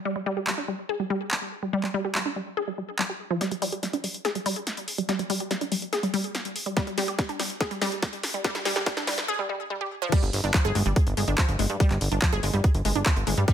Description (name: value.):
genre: psychedelic trance.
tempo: 143 BPM.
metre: 4/4.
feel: straight.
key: unclear.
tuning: A4 = 442 Hz.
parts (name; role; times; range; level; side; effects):
wide unison pluck; riff; 0.1-13.5 s; F3 to Ab4; -28 LUFS; equal; auto-pan, sidechain pumping, digital delay.
techno drum kit; drums; 0.5-13.5 s; crash cymbal, handclaps, hi-hat, snare drum; -30 LUFS; equal; overdrive, high-pass filter on hats, high-pass filter on snare, high-pass filter on cymbals.
electronic kick drum; drums; 6.8-13.5 s; none; -22 LUFS; equal; overdrive.
plucky analog bass; bass; 10.2-13.4 s; G1 to G2; -25 LUFS; equal; none.
room: light reverb, digital ambience.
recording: high-pass filter.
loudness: -24 LUFS.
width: side -9 dB against mid.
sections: 0.0-3.4 A section; 3.4-10.1 B section; 10.1-13.5 C section.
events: build-up 3.4-10.1; drum fill 3.4-9.3; filter sweep on synth arpeggio sound 3.4-10.1; break 9.3-10.1; drop 10.1-13.5.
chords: 0.0 G5.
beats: | 0.05 0.47 0.89 1.31 | 1.73 2.15 2.57 2.99 | 3.41 3.83 4.25 4.67 | 5.09 5.51 5.93 6.35 | 6.77 7.19 7.61 8.03 | 8.45 8.86 9.28 9.70 | 10.12 10.54 10.96 11.38 | 11.80 12.22 12.64 13.06 | 13.48.